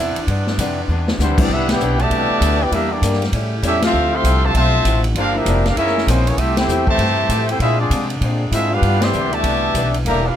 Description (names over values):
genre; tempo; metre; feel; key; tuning
jazz, big band swing; 196 BPM; 4/4; swing 62% on 8ths; C major; A4 = 440 Hz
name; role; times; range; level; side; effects
picked old ladder-braced acoustic guitar; accompaniment; 0.0-10.3 s; F#2 to G4; -26 LUFS; left 4 dB; none
edgy saxophone section; sustained chords; 0.0-10.4 s; B2 to G4; -30 LUFS; equal; none
upright bass; bass; 0.0-10.3 s; E1 to C3; -19 LUFS; equal; none
swinging big-band drum kit; drums; 0.2-10.1 s; crash cymbal, hi-hat, kick drum, ride cymbal, snare drum; -24 LUFS; equal; none
warm trumpet section; melody; 1.2-10.4 s; G3 to C6; -19 LUFS; equal; none
clear trombone section; second line; 1.2-10.4 s; B2 to G4; -22 LUFS; left 1 dB; none
warm concert grand piano; accompaniment; 1.4-1.5 s; G3 to E4; -22 LUFS; left 3 dB; none
room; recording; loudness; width
light reverb; close, detailed microphones; -15 LUFS; side -10 dB against mid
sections
0.0-1.5 A section; 1.5-10.4 B section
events
drum fill 0.9-1.2; band accent 1.6, 3.8, 6.5, 9.0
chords
0.0 Cmaj9; 2.7 Em7b5; 3.3 A7; 3.9 Dm9; 5.2 Gm7; 5.8 F#13; 6.4 Fmaj9; 7.6 Bb9; 8.8 Cmaj9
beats
| 0.28 0.58 0.89 1.19 | 1.50 1.80 2.11 2.41 | 2.72 3.02 3.33 3.63 | 3.94 4.24 4.55 4.85 | 5.16 5.46 5.77 6.08 | 6.38 6.69 6.99 7.30 | 7.60 7.91 8.21 8.52 | 8.83 9.13 9.44 9.74 | 10.05 10.36